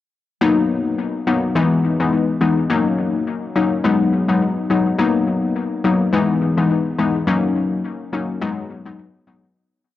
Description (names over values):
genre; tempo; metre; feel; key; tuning
afrobeats; 105 BPM; 4/4; swing 55% on 16ths; B major; A4 = 439 Hz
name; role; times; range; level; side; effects
glassy wavetable pluck; solo; 0.4-9.4 s; E3 to D#4; -16 LUFS; left 3 dB; chorus, analog delay
room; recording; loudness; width
moderate spring reverb, RT60 2.6 s; home recording on cassette; -16 LUFS; side -13 dB against mid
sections
0.4-9.6 verse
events
fade-out 7.3-9.6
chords
0.4 Bmaj7; 1.6 Emaj7; 2.7 F#6; 3.8 G#m7; 5.0 Bmaj7; 6.1 Emaj7; 7.3 F#6; 8.4 G#m7